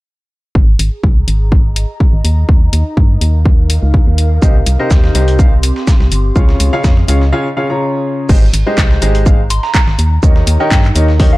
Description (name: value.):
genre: piano house.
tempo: 124 BPM.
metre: 4/4.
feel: swing 54% on 16ths.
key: Ab major.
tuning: A4 = 438 Hz.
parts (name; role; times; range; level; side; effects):
organ-like FM bass; bass; 0.6-11.4 s; G1 to G2; -12 LUFS; equal; sidechain pumping.
electronic kick drum; drums; 0.6-11.3 s; none; -10 LUFS; equal; none.
airy breathy pad; texture; 1.0-11.4 s; C4 to C6; -25 LUFS; left 1 dB; chorus, sidechain pumping.
house drum kit; drums; 0.8-11.1 s; crash cymbal, handclaps, hi-hat; -20 LUFS; left 2 dB; none.
clear concert grand piano; riff; 4.4-11.3 s; C3 to Bb5; -17 LUFS; left 1 dB; sidechain pumping, dub echo.
dusty soul sampler-style drum kit; drums; 4.4-11.3 s; hi-hat, shaker, snare drum; -26 LUFS; right 1 dB; overdrive, high-pass filter on perc, high-pass filter on snare, high-pass filter on hats, high-pass filter on room.
soft synth bell; melody; 9.5-11.4 s; F5 to C6; -20 LUFS; right 2 dB; chorus, phaser, dub echo.
room: little or no reverb.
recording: dark, warm production.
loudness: -9 LUFS.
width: side -19 dB against mid.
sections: 0.6-8.3 A section; 8.3-11.4 B section.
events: fade-in on analog synth pad 0.6-8.3; filter sweep on FM bass 0.6-8.3; break 7.3-8.3.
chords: 0.6 Ab5; 2.2 Eb5; 4.4 Cm7; 6.4 Db; 8.3 Abmaj7; 10.0 Eb7.